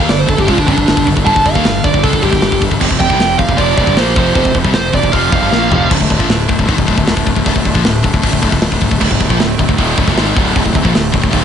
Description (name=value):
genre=heavy metal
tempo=155 BPM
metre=4/4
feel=straight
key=D phrygian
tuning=A4 = 436 Hz
part: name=bluesy overdriven lead guitar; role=melody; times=0.0-5.9 s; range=D4 to A5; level=-15 LUFS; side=right 3 dB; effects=distortion
part: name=chamber organ, clarinet reed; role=sustained chords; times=0.0-11.4 s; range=D3 to A4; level=-24 LUFS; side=equal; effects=none
part: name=heavy high-gain guitar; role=riff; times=0.0-5.9, 9.0-11.4 s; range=D2 to Bb3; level=-20 LUFS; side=right 12 dB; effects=distortion
part: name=scooped high-gain guitar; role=riff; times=0.0-11.4 s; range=D2 to Bb3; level=-19 LUFS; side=left 12 dB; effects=distortion
part: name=thick fuzz guitar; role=riff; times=0.0-11.4 s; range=D2 to Bb3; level=-19 LUFS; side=equal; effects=distortion
part: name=fuzz fingered electric bass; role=bass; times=0.0-11.4 s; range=D1 to Eb2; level=-18 LUFS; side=equal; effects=overdrive
part: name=tight metal drum kit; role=drums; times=0.0-11.4 s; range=crash cymbal, hi-hat, kick drum, snare drum, toms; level=-15 LUFS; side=equal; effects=none
room=light reverb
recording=nothing above 10.7 kHz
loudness=-10 LUFS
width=side -8 dB against mid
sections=0.0-5.9 A section; 5.9-11.4 B section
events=lead electric guitar solo 0.0-5.9; drum fill 5.5-5.9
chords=0.0 G5; 2.8 F5; 5.9 Dm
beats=0.09 0.48 0.86 | 1.25 1.64 2.03 2.42 | 2.81 3.19 3.58 3.97 | 4.36 4.75 5.13 5.52 | 5.91 6.29 6.68 7.07 | 7.46 7.84 8.23 8.62 | 9.00 9.39 9.78 10.16 | 10.55 10.94 11.32